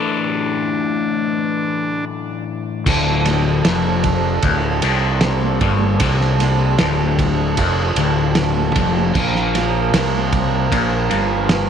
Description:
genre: psychedelic rock.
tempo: 76 BPM.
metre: 4/4.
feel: straight.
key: D minor.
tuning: A4 = 440 Hz.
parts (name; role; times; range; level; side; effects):
combo organ; melody; 0.0-2.0 s; D4; -23 LUFS; right 2 dB; tape echo.
crunchy overdriven guitar; riff; 0.0-11.7 s; D2 to A4; -20 LUFS; left 9 dB; phaser.
hand-pumped harmonium; sustained chords; 2.8-11.7 s; F3 to Bb4; -22 LUFS; right 15 dB; stereo widening.
fuzz fingered electric bass; bass; 2.9-11.7 s; D1 to C2; -21 LUFS; right 2 dB; overdrive.
cloth-damped thuddy drum kit; drums; 2.9-11.7 s; crash cymbal, kick drum, ride cymbal, snare drum; -20 LUFS; right 2 dB; none.
congas; percussion; 3.3-10.5 s; none; -29 LUFS; right 13 dB; none.
room: light reverb.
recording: 1960s-style stereo with parts hard left and right.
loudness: -15 LUFS.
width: side -8 dB against mid.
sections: 0.0-2.9 A section; 2.9-11.7 B section.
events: break 0.0-2.9.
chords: 0.0 Asus4; 2.9 Dm; 9.1 Bb5.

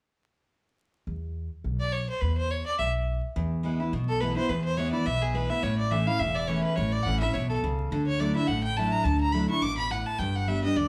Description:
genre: bluegrass.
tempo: 211 BPM.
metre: 4/4.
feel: swing 56% on 8ths.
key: unclear.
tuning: A4 = 438 Hz.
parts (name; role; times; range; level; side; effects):
upright bass; bass; 1.1-10.9 s; E1 to E2; -34 LUFS; equal; none.
clear fiddle; melody; 1.8-10.9 s; G#4 to D6; -32 LUFS; equal; none.
picked steel-string acoustic guitar; accompaniment; 3.4-10.9 s; E2 to G4; -30 LUFS; equal; none.
room: moderate large studio reverb, RT60 0.9 s.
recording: band playing live in one room, vinyl crackle.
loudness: -28 LUFS.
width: mono.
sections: 1.1-3.4 A section; 3.4-10.9 B section.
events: none.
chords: 1.1 E5; 3.4 E; 5.6 A; 7.9 Dadd9; 10.2 G.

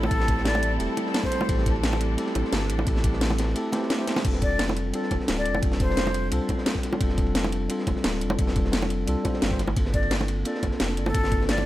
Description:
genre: liquid drum and bass.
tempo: 174 BPM.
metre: 4/4.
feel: straight.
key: F major.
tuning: A4 = 439 Hz.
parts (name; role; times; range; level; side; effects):
breathy jazz flute; melody; 0.0-1.7, 4.4-6.3, 9.9-11.7 s; A4 to D5; -30 LUFS; left 1 dB; tape echo.
mellow tine electric piano; accompaniment; 0.0-11.7 s; G3 to C5; -28 LUFS; equal; dub echo.
rich studio string section; sustained chords; 0.0-4.2 s; G3 to A4; -34 LUFS; left 1 dB; sidechain pumping.
warm sub bass; bass; 0.0-11.7 s; D1 to C2; -28 LUFS; equal; none.
bongos; percussion; 0.0-11.6 s; none; -30 LUFS; right 1 dB; none.
crunchy breakbeat drum kit; drums; 0.1-11.6 s; ride cymbal, snare drum; -36 LUFS; equal; high-pass filter on cymbals, high-pass filter on snare, high-pass filter on room.
electronic kick drum; drums; 0.1-11.4 s; none; -26 LUFS; equal; none.
garage drum kit; drums; 0.1-11.6 s; crash cymbal, hi-hat, snare drum; -29 LUFS; equal; none.
room: light reverb, studio ambience.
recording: none.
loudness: -22 LUFS.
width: side -15 dB against mid.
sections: 0.0-4.2 A section; 4.2-11.7 A section.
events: drop 0.0-4.2, 4.2-11.7; drum fill 4.1.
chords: 0.0 Am7; 4.2 F69; 9.6 Gm11.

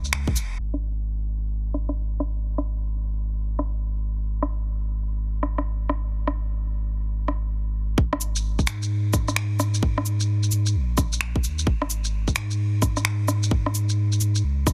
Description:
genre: future garage.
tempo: 130 BPM.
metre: 4/4.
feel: swing 64% on 16ths.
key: unclear.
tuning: A4 = 439 Hz.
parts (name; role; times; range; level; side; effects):
warm sub bass; bass; 0.0-14.7 s; E#1 to G#2; -27 LUFS; equal; tube saturation, sidechain pumping.
electronic shaker, finger snaps, cabasa and rim click; drums; 0.0-14.7 s; none; -28 LUFS; equal; soft clipping on snare.
electronic kick drum; drums; 0.3, 8.0-14.7 s; none; -25 LUFS; equal; none.
room: digital ambience.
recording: dense, heavily limited modern master, low-pass filter.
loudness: -25 LUFS.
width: mono.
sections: 0.6-8.0 A section; 8.0-14.7 B section.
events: band accent 0.1.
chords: none.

